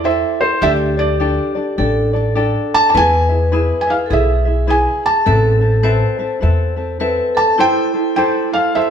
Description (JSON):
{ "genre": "Hawaiian", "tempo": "103 BPM", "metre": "4/4", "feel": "swing 61% on 8ths", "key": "A minor", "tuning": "A4 = 440 Hz", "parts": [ { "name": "felt-muted upright piano", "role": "melody", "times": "0.0-8.9 s", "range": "C5 to A5", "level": "-16 LUFS", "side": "right 1 dB", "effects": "none" }, { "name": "vibraphone with medium hard mallets", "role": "second line", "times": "0.0-8.9 s", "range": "E4 to C5", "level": "-20 LUFS", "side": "right 2 dB", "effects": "none" }, { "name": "tenor ukulele", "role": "accompaniment", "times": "0.0-8.9 s", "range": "C4 to E5", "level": "-21 LUFS", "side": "left 3 dB", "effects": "none" }, { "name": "upright bass", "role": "bass", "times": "0.0-7.2 s", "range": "A1 to E2", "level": "-17 LUFS", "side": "left 1 dB", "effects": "none" } ], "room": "wet stone room reverb, RT60 1.4 s", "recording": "band playing live in one room", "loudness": "-13 LUFS", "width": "side -8 dB against mid", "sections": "0.0-7.6 A section; 7.6-8.9 A section", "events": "none", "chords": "0.0 Am7; 0.6 Dsus4; 2.9 E; 5.3 Amadd9; 7.6 Am7", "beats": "0.04 | 0.62 1.20 1.78 2.36 | 2.94 3.52 4.10 4.68 | 5.26 5.85 6.43 7.01 | 7.59 8.17 8.75" }